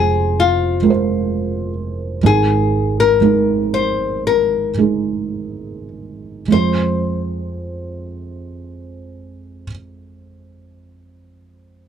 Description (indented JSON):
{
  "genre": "pop",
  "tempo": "49-67 BPM",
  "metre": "4/4",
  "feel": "straight",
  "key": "F minor",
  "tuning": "A4 = 443 Hz",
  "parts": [
    { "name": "nylon-string guitar", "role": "melody", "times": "0.0-9.7 s", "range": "F4 to C5", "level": "-18 LUFS", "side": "left 6 dB", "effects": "slapback echo" },
    { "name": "felt-muted upright piano", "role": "accompaniment", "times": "0.0-11.9 s", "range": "F1 to C5", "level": "-18 LUFS", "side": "right 4 dB", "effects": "none" }
  ],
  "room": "light reverb",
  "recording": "dry, close 1970s-style studio recording",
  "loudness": "-15 LUFS",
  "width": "side -8 dB against mid",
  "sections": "0.0-6.5 A section; 6.5-11.3 B section",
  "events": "slowing down 0.0-6.5",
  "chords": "0.0 Fm; 2.2 Absus2; 6.5 Fm",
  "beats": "0.38 1.29 | 2.23 3.21 4.24 5.33 | 6.50 7.71 8.90 10.09"
}